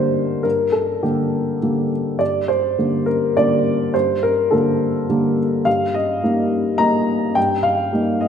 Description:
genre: neoclassical minimalist piano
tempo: 104 BPM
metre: 3/4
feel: rubato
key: G minor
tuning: A4 = 440 Hz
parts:
  - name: dark upright piano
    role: solo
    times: 0.0-8.3 s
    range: G2 to Bb5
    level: -16 LUFS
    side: equal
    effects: none
room: wet scoring stage reverb, RT60 1.6 s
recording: recorded in a church or concert hall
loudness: -16 LUFS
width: side -8 dB against mid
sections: 0.0-8.3 A section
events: none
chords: 0.0 Gmadd9; 5.7 Eb/G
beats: | 0.44 1.03 1.62 | 2.20 2.78 3.36 | 3.94 4.51 5.09 | 5.66 6.23 6.79 | 7.36 7.93

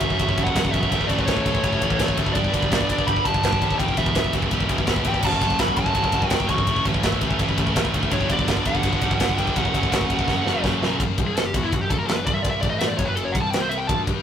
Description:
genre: heavy metal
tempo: 166 BPM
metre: 4/4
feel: straight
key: F# phrygian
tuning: A4 = 439 Hz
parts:
  - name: high-gain lead guitar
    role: melody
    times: 0.0-14.0 s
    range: E4 to C#6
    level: -25 LUFS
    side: equal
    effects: distortion
  - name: high-gain distorted guitar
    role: riff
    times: 0.0-11.0 s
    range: F#2 to A4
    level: -28 LUFS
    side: left 1 dB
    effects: distortion
  - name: scooped high-gain guitar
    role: riff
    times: 0.0-14.2 s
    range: E2 to G4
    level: -30 LUFS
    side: left 7 dB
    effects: distortion
  - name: scooped high-gain guitar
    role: riff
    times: 0.0-11.0 s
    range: E2 to A3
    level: -29 LUFS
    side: right 7 dB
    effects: distortion
  - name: fuzz picked electric bass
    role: bass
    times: 0.0-14.2 s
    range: E1 to G2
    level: -29 LUFS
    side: equal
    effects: overdrive
  - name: modern studio drum kit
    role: drums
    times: 0.0-14.2 s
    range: crash cymbal, kick drum, ride cymbal, snare drum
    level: -22 LUFS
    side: equal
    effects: none
room: light reverb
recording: rough rehearsal-room recording, tube saturation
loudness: -19 LUFS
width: side -8 dB against mid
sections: 0.0-11.0 A section; 11.0-14.2 B section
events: drum fill 10.3-11.0; lead electric guitar solo 11.0-14.2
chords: 0.0 F#m; 0.9 A; 2.4 G; 3.8 Em; 5.2 F#m; 6.7 A; 8.1 G; 9.6 F#m; 11.0 F#5; 12.3 C5; 12.6 A5; 13.0 F#5; 13.4 C5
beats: 0.20 0.56 | 0.92 1.28 1.64 2.00 | 2.36 2.72 3.08 3.44 | 3.80 4.16 4.52 4.88 | 5.24 5.60 5.96 6.32 | 6.68 7.04 7.40 7.76 | 8.12 8.48 8.84 9.20 | 9.56 9.92 10.28 10.64 | 11.01 11.37 11.73 12.09 | 12.45 12.81 13.17 13.53 | 13.89

